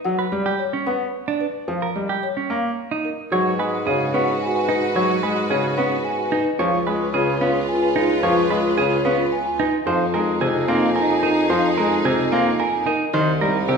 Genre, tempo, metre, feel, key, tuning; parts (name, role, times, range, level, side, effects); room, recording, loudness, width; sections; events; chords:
classical, minimalist pattern music; 110 BPM; 3/4; straight; G# dorian from 3.3 s; A4 = 440 Hz
folk marimba with soft mallets; melody; 0.0-13.8 s; A#4 to G#5; -27 LUFS; left 4 dB
bright concert grand piano; accompaniment; 0.1-13.8 s; C3 to B3; -24 LUFS; equal
clean electric guitar; arpeggios; 0.2-13.8 s; C4 to C#5; -24 LUFS; right 4 dB
warm French horn; second line; 3.3-13.8 s; Eb4 to F#4; -27 LUFS; right 1 dB
clear symphonic string section; sustained chords; 3.3-13.8 s; Eb4 to B4; -28 LUFS; left 2 dB
mellow bassoon; bass; 3.3-13.8 s; C2 to G#2; -25 LUFS; left 1 dB
celesta; arpeggios; 4.5-12.9 s; G#5; -30 LUFS; right 4 dB
wet recital hall reverb, RT60 1.5 s; recorded in a church or concert hall; -18 LUFS; side -5 dB against mid
0.0-3.3 A section; 3.3-13.8 B section
0.0 Gmaj7; 1.7 D#7; 3.3 G#m7; 6.6 C#7; 9.9 Fm7; 13.1 Cm7